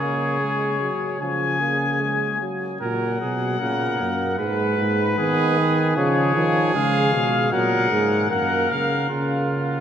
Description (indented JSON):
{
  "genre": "classical, imitative canzona for brass ensemble",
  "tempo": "76 BPM",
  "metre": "4/4",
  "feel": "straight",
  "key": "F# major",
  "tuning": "A4 = 443 Hz",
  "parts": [
    { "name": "clear trumpet", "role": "melody", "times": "0.0-9.1 s", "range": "B4 to G#5", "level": "-25 LUFS", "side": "left 5 dB", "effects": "none" },
    { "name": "warm trumpet", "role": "second line", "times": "0.0-9.8 s", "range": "E#4 to B4", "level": "-25 LUFS", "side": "right 3 dB", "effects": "none" },
    { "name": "warm euphonium", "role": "accompaniment", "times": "0.0-9.8 s", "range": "C#3 to B3", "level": "-25 LUFS", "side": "right 1 dB", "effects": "none" },
    { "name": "dark bass trombone", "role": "bass", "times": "0.0-9.8 s", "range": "F#2 to D#3", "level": "-25 LUFS", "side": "right 1 dB", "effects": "none" }
  ],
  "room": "wet cathedral reverb, RT60 6.2 s",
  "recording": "none",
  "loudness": "-19 LUFS",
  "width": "side -9 dB against mid",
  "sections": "0.0-2.8 A section; 2.8-9.1 B section",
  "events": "none",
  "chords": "0.0 C#sus4; 1.2 C#; 2.8 F#/A#; 4.4 G#m; 6.0 C#; 7.5 F#; 9.1 C#"
}